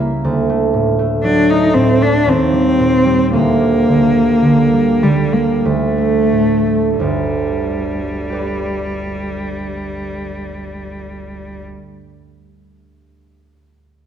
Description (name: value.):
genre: classical, romantic duo for cello and harp.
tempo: 42-62 BPM.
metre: 3/4.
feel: rubato.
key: unclear.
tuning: A4 = 440 Hz.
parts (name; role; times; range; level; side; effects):
concert harp; accompaniment; 0.0-12.4 s; G1 to D5; -16 LUFS; right 2 dB; none.
rich cello; melody; 1.2-11.6 s; G3 to Eb4; -16 LUFS; left 1 dB; none.
room: moderate concert hall reverb, RT60 1.8 s.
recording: dark, warm production.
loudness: -12 LUFS.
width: side -8 dB against mid.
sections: 0.0-7.0 A section; 7.0-10.9 B section.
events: slowing down 0.0-7.0.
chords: 0.2 D; 2.3 Eb; 3.3 Gm/D; 5.6 D5; 7.0 G.